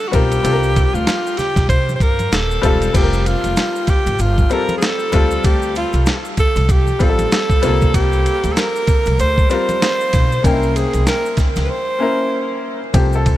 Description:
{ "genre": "hip hop, jazz-hop", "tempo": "96 BPM", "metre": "4/4", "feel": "swing 59% on 16ths", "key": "unclear", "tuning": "A4 = 439 Hz", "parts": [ { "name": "bright alto saxophone", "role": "melody", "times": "0.0-12.6 s", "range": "F4 to C5", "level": "-19 LUFS", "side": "right 1 dB", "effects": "tape echo" }, { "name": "maracas and congas", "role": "percussion", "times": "0.0-13.4 s", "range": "none", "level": "-31 LUFS", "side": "right 1 dB", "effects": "none" }, { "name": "clear upright piano", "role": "accompaniment", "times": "0.1-13.4 s", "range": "F3 to G5", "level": "-22 LUFS", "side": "left 4 dB", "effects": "none" }, { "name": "upright bass", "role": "bass", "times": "0.1-13.3 s", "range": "Eb1 to C3", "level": "-19 LUFS", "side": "equal", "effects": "none" }, { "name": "dusty soul sampler-style drum kit", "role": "drums", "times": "0.1-13.4 s", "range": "crash cymbal, hi-hat, kick drum, ride cymbal, snare drum", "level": "-18 LUFS", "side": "equal", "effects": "none" } ], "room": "light reverb, small room ambience", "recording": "none", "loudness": "-14 LUFS", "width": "side -14 dB against mid", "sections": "0.0-2.9 A section; 2.9-12.9 B section", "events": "break 11.7-12.9", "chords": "0.4 C7(no3); 2.9 Fsus24; 5.1 Dm7; 7.6 C9sus4; 10.4 C7b9" }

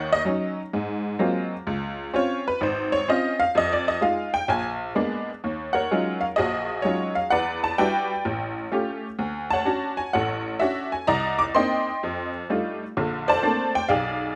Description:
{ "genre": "solo jazz", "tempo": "128 BPM", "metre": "4/4", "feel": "swing 68% on 8ths", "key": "unclear", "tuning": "A4 = 442 Hz", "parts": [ { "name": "honky-tonk upright piano", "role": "solo", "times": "0.0-14.4 s", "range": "Ab1 to D6", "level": "-25 LUFS", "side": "equal", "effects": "none" } ], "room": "light reverb", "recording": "none", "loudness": "-25 LUFS", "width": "mono", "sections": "0.0-5.4 A section; 5.4-14.4 B section", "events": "honky-tonk piano solo 0.0-5.4", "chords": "0.0 Ebm7; 0.7 Ab13; 1.7 Dbmaj7; 3.5 Fm7; 4.5 Bb7b9; 5.4 Ebm11; 7.3 Em9; 8.2 Aaug7; 9.2 Dmaj7; 11.1 Cm9; 12.0 F13; 12.9 Bbmaj9" }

